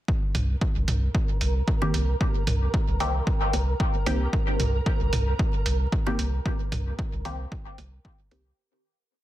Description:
dub techno; 113 BPM; 4/4; swing 54% on 16ths; C minor; A4 = 440 Hz
electronic kick drum; drums; 0.1-8.2 s; -26 LUFS; equal
flickering grainy texture; texture; 0.6-8.6 s; Bb4; -35 LUFS; right 3 dB; built-in reverb, sidechain pumping
pure sine sub bass; bass; 0.3-8.5 s; C2; -25 LUFS; equal; sidechain pumping
electronic hi-hat; drums; 0.3-8.4 s; -35 LUFS; right 3 dB; dub echo
electronic toms and bongos; percussion; 0.3-8.4 s; -34 LUFS; right 2 dB; sidechain pumping on toms, sidechain pumping on perc, dub echo
filtered dub chord stab; stabs; 1.8-8.4 s; Eb3 to G4; -31 LUFS; left 1 dB; chorus, phaser, sidechain pumping, dub echo
little or no reverb; dense, heavily limited modern master, vinyl crackle; -23 LUFS; side -14 dB against mid
0.1-8.6 groove
fade-out 5.7-8.6
0.1 Cm7

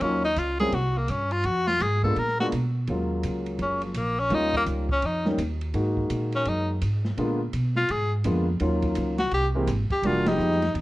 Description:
jazz, small-group swing and bop; 168 BPM; 4/4; swing 64% on 8ths; Eb minor; A4 = 440 Hz
bright tenor saxophone; melody; 0.0-10.8 s; F3 to Bb4; -25 LUFS; left 1 dB; plate reverb
dark concert grand piano; accompaniment; 0.0-10.6 s; D3 to G4; -27 LUFS; equal
upright bass; bass; 0.0-10.8 s; F1 to Cb3; -27 LUFS; equal
open jazz drum kit; drums; 0.0-10.8 s; hi-hat, kick drum, ride cymbal, snare drum; -36 LUFS; equal
light reverb; worn, warbling old tape, cassette tape, warbly pitch drift; -23 LUFS; side -17 dB against mid
0.0-2.9 A section; 2.9-10.8 B section
band accent 10.2
0.0 Ebm7; 0.7 C5; 1.4 Fdim; 2.2 Bb7b9; 2.9 Ebm11; 4.3 Eb7; 5.7 Absus2; 7.2 Bb7b9; 8.6 Ebm9; 9.3 C7b13; 10.0 Fm7b5

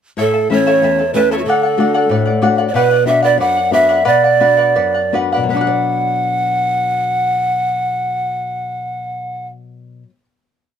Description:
andean folk, Andean ensemble; 75-94 BPM; 2/4; straight; B minor; A4 = 437 Hz
breathy bright large pan pipes; melody; 0.2-9.5 s; F#4 to F#5; -14 LUFS; right 3 dB
charango; accompaniment; 0.2-10.3 s; E4 to A5; -18 LUFS; left 4 dB
nylon-string guitar; accompaniment; 0.2-10.2 s; E2 to D5; -20 LUFS; left 5 dB
light reverb; minimal, uncompressed stereo recording; -12 LUFS; side -8 dB against mid
0.2-5.5 A section; 5.5-8.7 final chord
slowing down 2.7-5.5
0.2 A; 1.5 D; 2.7 Bm

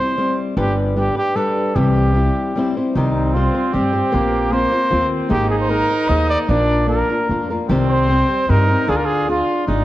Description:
mexican folk, mariachi; 152 BPM; 3/4; straight; C minor; A4 = 441 Hz
warm trumpet; melody; 0.0-9.7 s; Eb4 to Eb5; -20 LUFS; equal
flamenco guitar; accompaniment; 0.0-9.8 s; Bb2 to D5; -20 LUFS; left 2 dB
upright bass; bass; 0.6-9.8 s; G1 to G2; -19 LUFS; equal
clear trumpet; second line; 3.0-9.8 s; Bb3 to F4; -23 LUFS; right 4 dB; slapback echo
moderate scoring stage reverb, RT60 1.7 s; worn, warbling old tape, cassette tape, warbly pitch drift; -15 LUFS; side -15 dB against mid
0.0-3.0 A section; 3.0-9.8 B section
0.0 C; 0.6 G; 1.8 C; 3.0 Cm; 4.1 Bbsus2; 5.3 Abadd9; 6.5 Bb; 7.7 Cm; 8.9 Ddim

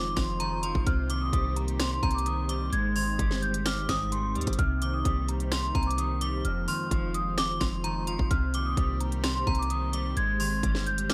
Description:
hip hop, trap; 129 BPM; 4/4; half-time; C minor; A4 = 440 Hz
large celesta; melody; 0.0-11.1 s; Bb5 to Ab6; -36 LUFS; equal; low-pass filter, slapback echo
metallic FM bell; second line; 0.0-11.1 s; Bb5 to Eb6; -38 LUFS; equal; chorus, slapback echo
electric guitar at the edge of break-up; accompaniment; 0.0-11.1 s; F2 to Ab3; -36 LUFS; equal; analog chorus, low-pass filter
airy breathy pad; sustained chords; 0.0-11.1 s; Ab3 to C5; -42 LUFS; equal; chorus
clean 808-style bass; bass; 0.0-11.1 s; F1 to Eb2; -33 LUFS; equal
trap drum kit; drums; 0.2-11.1 s; finger snaps, hi-hat, kick drum, snare drum; -32 LUFS; equal
digital ambience; -28 LUFS; mono
0.0-11.1 A section
0.0 Fm7; 0.9 Cm7; 2.7 Abmaj7; 4.6 Cm7; 6.4 Fm7; 8.3 Cm7; 10.2 Abmaj7

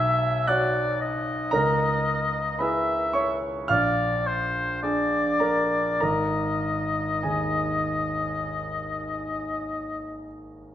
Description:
classical, impressionist duo for oboe and grand piano; 49-58 BPM; 4/4; rubato; A4 = 440 Hz
warm oboe; melody; 0.0-10.3 s; C5 to Fb5; -26 LUFS; left 2 dB
warm grand piano; accompaniment; 0.0-10.7 s; Ab1 to Ab6; -26 LUFS; right 1 dB
wet scoring stage reverb, RT60 1.9 s; -23 LUFS; side -11 dB against mid
0.0-10.7 A section
0.0 Bsus2; 1.5 Dbm9; 3.7 Bb7; 6.0 Absus2

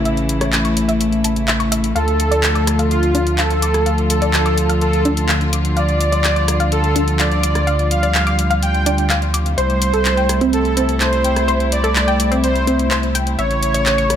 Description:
progressive house; 126 BPM; 4/4; straight; D minor; A4 = 440 Hz
warm studio string section; sustained chords; 0.0-14.2 s; C3 to F4; -20 LUFS; left 1 dB
saturated sub bass; bass; 0.0-14.2 s; A1 to D2; -20 LUFS; equal
analog pluck; arpeggios; 0.1-14.0 s; C4 to D6; -23 LUFS; equal; chorus, ping-pong delay
house drum kit; drums; 0.1-14.2 s; handclaps, hi-hat, rim click; -22 LUFS; left 1 dB
soft supersaw; melody; 2.0-14.2 s; F4 to G5; -20 LUFS; right 1 dB; ping-pong delay
light reverb; -14 LUFS; side -9 dB against mid
0.0-14.2 A section
filter sweep on synth pluck 0.0-14.2
0.0 A; 2.0 Dm; 9.6 C6; 13.4 A

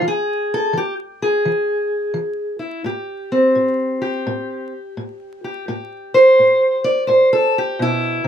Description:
acoustic country blues, solo or duo; 85 BPM; 4/4; swing 65% on 8ths; A minor; A4 = 440 Hz
fingerpicked steel-string acoustic guitar; solo; 0.0-8.3 s; A2 to D5; -16 LUFS; equal
moderate booth ambience, RT60 0.2 s; vinyl crackle; -15 LUFS; side -9 dB against mid
0.0-5.7 A section; 5.7-8.3 B section
steel-string acoustic guitar solo 5.7-8.3
0.0 N.C.; 2.9 Am7; 5.7 Am9

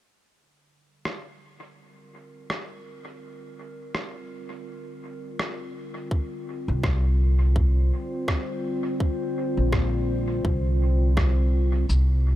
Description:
ambient dub; 83 BPM; 4/4; swing 57% on 16ths; A4 = 440 Hz
warbly tape-like pad; sustained chords; 1.9-12.4 s; D3 to C5; -31 LUFS; equal; chorus, built-in reverb
electronic rim click and cabasa; drums; 1.1-12.1 s; -33 LUFS; equal; dub echo
electronic kick drum; drums; 6.1-11.3 s; -25 LUFS; equal
upright bass; bass; 6.7-12.4 s; Bb1 to C2; -21 LUFS; equal
little or no reverb; -22 LUFS; side -14 dB against mid
0.3-11.9 A section
fade-in on ambient pad 0.3-11.9
0.3 C5

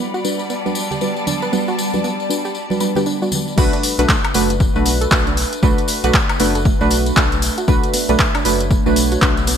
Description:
deep house; 117 BPM; 4/4; swing 60% on 16ths; B minor; A4 = 440 Hz
warbly tape-like pad; sustained chords; 0.0-9.6 s; G3 to F#5; -27 LUFS; right 2 dB; chorus, built-in reverb, phaser, sidechain pumping
soft round pluck; arpeggios; 0.0-9.6 s; A3 to B4; -27 LUFS; right 3 dB; chorus, sidechain pumping, ping-pong delay
muted studio string section; texture; 0.0-3.6 s; G3 to B5; -25 LUFS; left 2 dB; sidechain pumping
tambourine; percussion; 0.1-9.6 s; -27 LUFS; left 6 dB
deep mellow chord stab; stabs; 0.2-9.3 s; G3 to D5; -20 LUFS; right 2 dB; chorus, ping-pong delay
congas; percussion; 0.7-3.4 s; -30 LUFS; right 5 dB
rubbery square bass; bass; 3.6-9.6 s; F#1 to B1; -21 LUFS; left 1 dB; tube saturation, sidechain pumping
deep house drum kit; drums; 3.6-9.6 s; crash cymbal, handclaps, hi-hat, woodblock; -20 LUFS; equal; overdrive, gated reverb
electronic kick drum; drums; 3.6-9.3 s; -18 LUFS; left 1 dB; overdrive
light reverb, digital ambience; bright 1980s-style digital production; -14 LUFS; side -8 dB against mid
0.0-3.6 A section; 3.6-9.6 B section
filter sweep on synth arpeggio sound 0.0-3.6; drop 3.6-9.6
0.0 Gmaj7; 3.6 Bm7

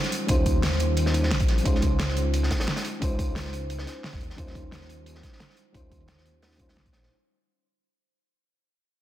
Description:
liquid drum and bass; 176 BPM; 4/4; straight; A4 = 441 Hz
mellow FM electric piano; accompaniment; 0.0-7.1 s; G3 to C5; -31 LUFS; equal; chorus, ping-pong delay
crunchy breakbeat drum kit; drums; 0.0-7.1 s; hi-hat, snare drum; -34 LUFS; equal; high-pass filter on hats, high-pass filter on snare, high-pass filter on room
pop drum kit; drums; 0.0-7.0 s; hi-hat, snare drum; -32 LUFS; equal; low-pass filter on hats, low-pass filter on perc, low-pass filter on snare
dark detuned saw bass; bass; 0.3-7.1 s; Ab1 to Eb2; -27 LUFS; equal
electronic kick drum; drums; 0.3-6.9 s; -27 LUFS; equal
light reverb; dense, heavily limited modern master; -22 LUFS; side -13 dB against mid
0.0-7.1 A section
fade-out 0.0-7.1
0.0 Eb13; 1.7 Dbmaj9; 4.2 Eb13

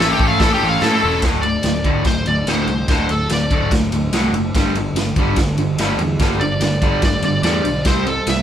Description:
garage rock duo or trio; 145 BPM; 4/4; straight; A4 = 440 Hz
overdriven slide guitar; melody; 0.0-3.7, 6.4-8.4 s; G4 to F5; -21 LUFS; equal
raw garage guitar; riff; 0.0-8.4 s; D2 to A4; -19 LUFS; equal; overdrive
fuzz picked electric bass; bass; 0.0-8.4 s; D1 to A2; -22 LUFS; equal; overdrive
raw garage drum kit; drums; 0.0-8.4 s; hi-hat, kick drum, ride cymbal, snare drum; -20 LUFS; equal
light reverb; band playing live in one room; -15 LUFS; side -10 dB against mid
0.0-1.2 A section; 1.2-8.4 B section
electric slide guitar solo 1.2-8.4
0.0 A; 1.2 D5; 4.5 G5; 7.9 C

